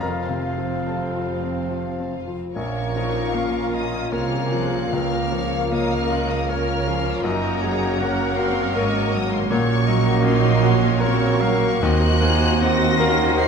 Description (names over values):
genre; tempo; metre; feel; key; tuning
classical; 69-81 BPM; 3/4; rubato; Bb minor; A4 = 443 Hz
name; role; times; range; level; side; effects
clear baby grand piano; melody; 0.0-13.5 s; Bb1 to Bb5; -25 LUFS; left 3 dB; none
rich symphonic violin section; melody; 0.0-13.5 s; F5 to C7; -30 LUFS; left 2 dB; none
clear clarinet; second line; 0.0-13.5 s; F4 to Ab5; -32 LUFS; left 3 dB; none
mellow cor anglais; second line; 0.0-13.5 s; Bb4 to F5; -32 LUFS; equal; none
mellow hollow small flute group; second line; 0.0-13.5 s; F5 to Gb5; -32 LUFS; equal; none
warm symphonic violin section; second line; 0.0-13.5 s; A3 to Gb5; -32 LUFS; left 3 dB; none
dark bassoon; accompaniment; 0.0-13.5 s; Bb3 to C4; -31 LUFS; left 1 dB; none
warm symphonic viola section; accompaniment; 0.0-13.5 s; Bb3 to Bb4; -28 LUFS; right 1 dB; none
clear trombone section; sustained chords; 0.0-13.5 s; Bb2 to Bb3; -32 LUFS; right 4 dB; none
dark French horn section; sustained chords; 0.0-13.5 s; C4 to Gb4; -31 LUFS; left 4 dB; none
dark symphonic cello section; bass; 0.0-13.5 s; Eb2 to Db3; -27 LUFS; right 5 dB; none
rich symphonic double bass section; bass; 0.0-13.5 s; F1 to Eb2; -26 LUFS; right 6 dB; none
room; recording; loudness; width
moderate scoring stage reverb, RT60 1.6 s; none; -18 LUFS; side -6 dB against mid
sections
0.0-2.6 A section; 2.6-13.5 B section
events
none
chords
0.0 F; 2.6 Bbm; 4.9 Bbm/Db; 7.2 Gb; 9.5 Gb/Bb; 11.8 Cm7b5/Eb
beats
| 0.02 0.87 1.71 | 2.56 3.36 4.14 | 4.94 5.74 6.51 | 7.25 8.00 8.76 | 9.51 10.25 11.01 | 11.84 12.61 13.38